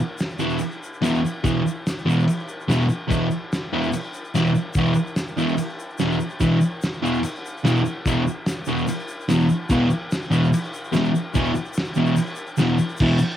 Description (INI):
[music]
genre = garage rock duo or trio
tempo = 145 BPM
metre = 4/4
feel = straight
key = unclear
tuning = A4 = 438 Hz
[part]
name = cloth-damped thuddy drum kit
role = drums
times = 0.2-13.1 s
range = crash cymbal, kick drum, snare drum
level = -27 LUFS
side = equal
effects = vintage 12-bit sampler grit, cassette tape
[part]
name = tube shaker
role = percussion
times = 0.2-13.4 s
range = none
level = -43 LUFS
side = left 9 dB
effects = none
[part]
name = fuzz guitar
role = riff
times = 0.4-13.2 s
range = E2 to E3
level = -20 LUFS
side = equal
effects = distortion
[sound]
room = light reverb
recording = home recording on cassette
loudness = -20 LUFS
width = side -11 dB against mid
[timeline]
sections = 0.0-13.0 A section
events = none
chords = 0.0 E5